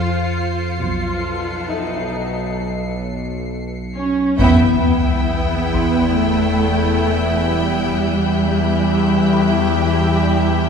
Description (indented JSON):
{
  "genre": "cinematic, suspense film score",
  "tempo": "67 BPM",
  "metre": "4/4",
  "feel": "straight",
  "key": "E minor from 4.4 s",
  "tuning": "A4 = 440 Hz",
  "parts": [
    { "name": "rich studio violin section", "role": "melody", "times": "0.0-10.7 s", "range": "Ab4 to G5", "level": "-28 LUFS", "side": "left 2 dB", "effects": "none" },
    { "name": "warm studio viola section", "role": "accompaniment", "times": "0.0-10.6 s", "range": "B3 to C#5", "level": "-27 LUFS", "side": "equal", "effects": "none" },
    { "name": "evolving wavetable pad", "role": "sustained chords", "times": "0.0-10.7 s", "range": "B3 to A5", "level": "-26 LUFS", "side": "right 1 dB", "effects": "ensemble chorus, built-in reverb" },
    { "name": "analog drone", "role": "drone", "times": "0.0-10.7 s", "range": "B1 to F2", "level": "-21 LUFS", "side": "left 2 dB", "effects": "chorus" },
    { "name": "celesta", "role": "texture", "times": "0.0-10.7 s", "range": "E4 to C6", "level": "-32 LUFS", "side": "left 4 dB", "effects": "none" },
    { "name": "rich studio violin section", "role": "texture", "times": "0.0-10.7 s", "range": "E6 to C#7", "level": "-32 LUFS", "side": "left 4 dB", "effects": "none" },
    { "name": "rich studio double bass section", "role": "bass", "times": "0.8-10.7 s", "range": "B1 to E2", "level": "-24 LUFS", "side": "right 3 dB", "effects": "none" },
    { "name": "warm studio cello section", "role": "bass", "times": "0.8-10.6 s", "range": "B2 to C#4", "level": "-19 LUFS", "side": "right 1 dB", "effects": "none" },
    { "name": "rich studio violin section", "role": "second line", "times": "4.4-10.7 s", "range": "E4 to E5", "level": "-24 LUFS", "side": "left 2 dB", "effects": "none" },
    { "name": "solo taiko drums", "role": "drums", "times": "4.4-6.1 s", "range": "none", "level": "-24 LUFS", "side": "left 1 dB", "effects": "none" },
    { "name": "sub drop", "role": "sound effects", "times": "4.4-8.0 s", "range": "none", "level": "-24 LUFS", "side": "left 1 dB", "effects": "none" }
  ],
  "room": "wet concert hall reverb, RT60 2.0 s",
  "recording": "heard from further back in the room",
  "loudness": "-16 LUFS",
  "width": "side -6 dB against mid",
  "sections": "0.0-4.4 A section; 4.4-10.7 B section",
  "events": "band accent 4.4-5.3; impact 4.4-8.0",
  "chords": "0.0 Fm; 0.8 B7; 4.4 Em"
}